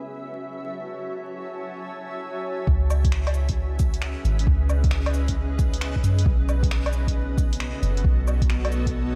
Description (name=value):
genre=future garage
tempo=134 BPM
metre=4/4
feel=swing 66% on 16ths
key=C# minor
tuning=A4 = 440 Hz
part: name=granular cloud pad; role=sustained chords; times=0.0-9.2 s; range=B3 to A5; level=-34 LUFS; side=equal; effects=built-in reverb, sidechain pumping
part: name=soft 808-style bass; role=bass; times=2.7-9.2 s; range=F#1 to F#2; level=-25 LUFS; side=equal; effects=sidechain pumping
part: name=electronic kick drum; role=drums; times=2.7-8.9 s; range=none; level=-25 LUFS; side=equal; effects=overdrive
part: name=deep house drum kit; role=drums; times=2.9-8.9 s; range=cabasa, finger snaps, hi-hat, woodblock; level=-35 LUFS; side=equal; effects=overdrive
room=light reverb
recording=vinyl crackle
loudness=-23 LUFS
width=mono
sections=0.0-2.7 A section; 2.7-9.2 B section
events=filter sweep on ambient pad 0.0-2.7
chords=0.0 F#m7; 2.7 C#m7; 6.3 B7